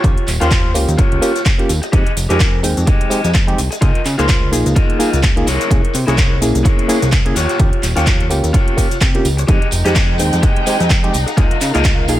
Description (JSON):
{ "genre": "filtered disco house", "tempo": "127 BPM", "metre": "4/4", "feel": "swing 57% on 16ths", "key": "F minor", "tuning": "A4 = 438 Hz", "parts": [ { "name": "barky reed electric piano", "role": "accompaniment", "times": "0.0-12.2 s", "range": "Ab3 to G5", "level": "-20 LUFS", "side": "equal", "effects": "overdrive, phaser, sidechain pumping, low-pass filter" }, { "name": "electric guitar at the edge of break-up", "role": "riff", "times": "0.0-12.0 s", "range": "E4 to Eb5", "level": "-21 LUFS", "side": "left 2 dB", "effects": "spring reverb, sidechain pumping, low-pass filter" }, { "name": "fat analog bass", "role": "bass", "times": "0.0-12.2 s", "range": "Eb1 to Db3", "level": "-18 LUFS", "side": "equal", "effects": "sidechain pumping, low-pass filter" }, { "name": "electronic kick drum", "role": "drums", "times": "0.0-12.0 s", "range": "none", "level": "-14 LUFS", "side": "equal", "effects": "none" }, { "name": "house drum kit", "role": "drums", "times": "0.0-12.2 s", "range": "handclaps, hi-hat, shaker", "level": "-22 LUFS", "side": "equal", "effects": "sidechain pumping on hats, sidechain pumping on perc" }, { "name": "tambourine", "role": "percussion", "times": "0.0-12.2 s", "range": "none", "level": "-32 LUFS", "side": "right 3 dB", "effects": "sidechain pumping on perc, low-pass filter on perc" }, { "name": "dark studio violin section", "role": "sustained chords", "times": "9.5-12.2 s", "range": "Ab3 to G5", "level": "-23 LUFS", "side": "right 1 dB", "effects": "sidechain pumping, low-pass filter" } ], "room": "little or no reverb", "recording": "none", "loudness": "-12 LUFS", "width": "side -14 dB against mid", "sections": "0.0-12.2 A section", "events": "none", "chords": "0.0 Eb9; 1.9 Fm9; 3.8 Db69; 5.5 C7b9b13; 7.4 Eb9; 9.5 Fm9; 11.4 Db69" }